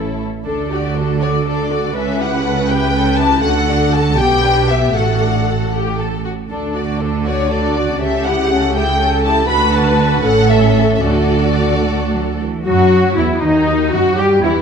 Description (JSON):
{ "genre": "quick classical-period movement for symphony orchestra", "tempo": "72-82 BPM (dotted quarters)", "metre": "6/8", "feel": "rubato", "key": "D major", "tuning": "A4 = 440 Hz", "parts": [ { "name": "dark studio violin section", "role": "melody", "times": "0.0-14.6 s", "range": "D#4 to B5", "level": "-19 LUFS", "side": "left 5 dB", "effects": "none" }, { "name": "rich studio violin section", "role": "second line", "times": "0.0-14.6 s", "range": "B3 to D5", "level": "-22 LUFS", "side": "left 3 dB", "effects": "none" }, { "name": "rich studio viola section", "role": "accompaniment", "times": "0.0-14.6 s", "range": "D#3 to B4", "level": "-20 LUFS", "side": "right 1 dB", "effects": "none" }, { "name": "dark French horn section", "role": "sustained chords", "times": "0.0-0.2, 12.6-14.6 s", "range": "D#3 to C#4", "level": "-20 LUFS", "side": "left 5 dB", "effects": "none" }, { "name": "rich studio double bass section", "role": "bass", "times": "0.0-14.6 s", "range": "A1 to G2", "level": "-19 LUFS", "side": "right 4 dB", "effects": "none" }, { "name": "warm studio cello section", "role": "bass", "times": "0.0-14.5 s", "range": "A2 to G4", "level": "-20 LUFS", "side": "right 2 dB", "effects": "none" }, { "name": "clear clarinet", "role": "second line", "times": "12.7-14.5 s", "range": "D#4 to G4", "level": "-22 LUFS", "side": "left 4 dB", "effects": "none" }, { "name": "small flute group", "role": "second line", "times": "12.7-14.6 s", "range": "D#4 to G4", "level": "-23 LUFS", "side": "left 4 dB", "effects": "none" } ], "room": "moderate concert hall reverb, RT60 2.2 s", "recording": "dark, warm production", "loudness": "-13 LUFS", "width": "side -6 dB against mid", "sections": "0.4-12.7 A section; 12.7-14.6 B section", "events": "none", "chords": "0.4 D; 1.9 A7/C#; 3.4 D; 4.2 G/B; 4.9 D/A; 6.5 D; 8.0 A7/C#; 9.5 D; 10.2 A; 11.0 D; 12.7 Esus2; 13.4 D#m", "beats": "| 0.44 1.20 | 1.95 2.68 | 3.41 4.17 | 4.94 5.72 | 6.50 7.26 | 8.01 8.75 | 9.49 10.24 | 11.03 11.85 | 12.66 13.43 | 14.19" }